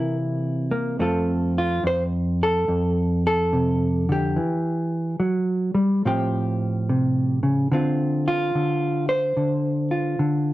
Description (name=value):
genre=solo jazz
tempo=72 BPM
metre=4/4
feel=swing 66% on 8ths, rubato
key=F major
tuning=A4 = 440 Hz
part: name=hollow-body jazz guitar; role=solo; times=0.0-10.5 s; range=F2 to C5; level=-20 LUFS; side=equal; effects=none
room=light reverb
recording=worn, warbling old tape, cassette tape, warbly pitch drift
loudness=-20 LUFS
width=side -16 dB against mid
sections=0.0-1.0 A section; 1.0-10.5 B section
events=hollow-body jazz guitar solo 0.0-1.0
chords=0.0 C7; 1.0 F; 4.4 Em; 6.1 A7alt; 7.7 Dm7